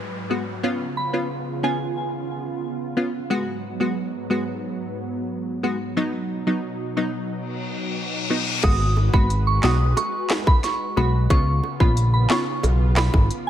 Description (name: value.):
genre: dancehall.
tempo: 90 BPM.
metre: 4/4.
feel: straight.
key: G# dorian.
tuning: A4 = 440 Hz.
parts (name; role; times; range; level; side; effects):
lush unison pad; sustained chords; 0.0-13.5 s; G#2 to B4; -30 LUFS; right 1 dB; chorus, phaser, sidechain pumping.
downlifter and reverse cymbal; sound effects; 0.0-8.6 s; none; -32 LUFS; left 4 dB; none.
wavetable chord stab; accompaniment; 0.3-12.4 s; F#3 to F#4; -25 LUFS; left 1 dB; none.
soft synth bell; melody; 1.0-1.8, 8.6-13.5 s; G#5 to D#6; -26 LUFS; right 3 dB; chorus, ping-pong delay.
fat analog bass; bass; 8.6-13.3 s; G#1 to C#2; -19 LUFS; equal; none.
island pop drum kit; drums; 8.6-13.5 s; crash cymbal, handclaps, hi-hat, kick drum, snare drum; -21 LUFS; equal; overdrive.
bongos; percussion; 8.6-13.3 s; none; -32 LUFS; right 3 dB; none.
room: light reverb, digital ambience.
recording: none.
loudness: -20 LUFS.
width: side -11 dB against mid.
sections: 0.0-8.6 A section; 8.6-13.5 B section.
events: reverse cymbal 7.5-8.6.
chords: 0.0 G#m7; 0.6 C#7; 3.3 G#m7; 6.0 B; 8.6 G#m7; 11.3 C#7.